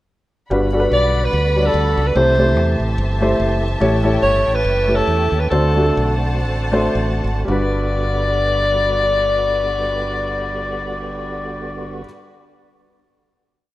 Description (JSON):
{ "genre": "uptempo gospel", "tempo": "109-146 BPM", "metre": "4/4", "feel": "swing 56% on 8ths", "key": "G major", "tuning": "A4 = 439 Hz", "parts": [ { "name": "warm upright piano", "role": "accompaniment", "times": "0.5-12.1 s", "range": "G2 to D5", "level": "-20 LUFS", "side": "left 1 dB", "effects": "none" }, { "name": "dark studio string section", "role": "sustained chords", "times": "0.5-12.0 s", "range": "G3 to B5", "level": "-28 LUFS", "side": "left 2 dB", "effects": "none" }, { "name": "tonewheel organ", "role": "sustained chords", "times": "0.5-12.0 s", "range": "D3 to G4", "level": "-29 LUFS", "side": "right 2 dB", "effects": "chorus vibrato, fast rotary speaker" }, { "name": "fingered electric bass", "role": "bass", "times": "0.5-12.0 s", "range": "F#1 to E2", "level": "-20 LUFS", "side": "equal", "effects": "none" }, { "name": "breathy alto saxophone", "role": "melody", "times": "0.9-12.0 s", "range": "A4 to D5", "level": "-19 LUFS", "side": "left 1 dB", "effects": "none" } ], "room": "light reverb, small room ambience", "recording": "rough home demo mix", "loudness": "-15 LUFS", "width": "side -16 dB against mid", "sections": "0.5-7.5 breakdown; 7.5-11.9 final chord", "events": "slowing down 3.8-7.5", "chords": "0.5 Gmaj7; 2.2 C6; 3.8 A7; 5.5 D7; 7.5 Gmaj7" }